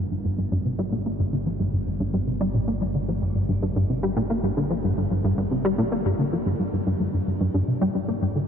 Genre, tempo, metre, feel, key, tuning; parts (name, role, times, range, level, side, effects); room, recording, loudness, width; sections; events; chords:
ambient, sequencer-driven space music; 111 BPM; 4/4; straight; G minor; A4 = 441 Hz
plucky analog bass; riff; 0.0-8.5 s; G2 to Bb3; -22 LUFS; equal; ensemble chorus, ping-pong delay
analog drone; bass; 0.0-8.5 s; G1; -32 LUFS; equal; chorus
wet huge ambient reverb, RT60 7.9 s; dark, warm production; -22 LUFS; side -8 dB against mid
0.0-8.5 A section
filter sweep on analog synth bass 0.0-8.5
0.0 Gm